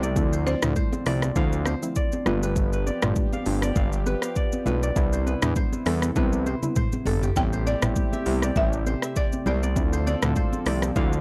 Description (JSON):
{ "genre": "afrobeats", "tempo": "100 BPM", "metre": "4/4", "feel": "swing 55% on 16ths", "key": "D dorian", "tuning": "A4 = 440 Hz", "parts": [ { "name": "buzzing marimba with medium hard mallets", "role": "melody", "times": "0.0-1.3, 7.4-10.9 s", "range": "C5 to G5", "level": "-33 LUFS", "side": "equal", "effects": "none" }, { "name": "soft round pluck", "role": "accompaniment", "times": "0.0-11.2 s", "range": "F3 to F4", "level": "-33 LUFS", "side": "equal", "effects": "chorus" }, { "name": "warm analog pad", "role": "sustained chords", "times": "0.0-11.2 s", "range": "C3 to G4", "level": "-39 LUFS", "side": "equal", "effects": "none" }, { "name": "kora", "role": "riff", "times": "0.0-11.2 s", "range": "G4 to F5", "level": "-35 LUFS", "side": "equal", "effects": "analog delay" }, { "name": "fat analog bass", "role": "bass", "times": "0.0-11.2 s", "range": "G1 to E2", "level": "-28 LUFS", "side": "equal", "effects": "none" }, { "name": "afro-pop drum kit", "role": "drums", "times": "0.0-11.2 s", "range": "hi-hat, kick drum, rim click, shaker, toms", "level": "-28 LUFS", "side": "equal", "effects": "none" }, { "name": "congas", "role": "percussion", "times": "0.5-11.1 s", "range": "none", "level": "-35 LUFS", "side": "equal", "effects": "none" }, { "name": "mellow horn section", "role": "second line", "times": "7.4-11.2 s", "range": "C4 to A4", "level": "-39 LUFS", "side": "equal", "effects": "none" } ], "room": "little or no reverb", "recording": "dry, gritty hardware recording", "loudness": "-24 LUFS", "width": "mono", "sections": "0.0-11.2 A section", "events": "drum fill 6.2-7.4", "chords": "0.2 Dm7; 2.3 G7; 5.0 Cmaj7; 7.4 Am7; 9.8 Dm7", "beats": "| 0.16 0.76 1.36 1.96 | 2.56 3.16 3.76 4.36 | 4.96 5.56 6.16 6.76 | 7.36 7.96 8.56 9.16 | 9.76 10.36 10.96" }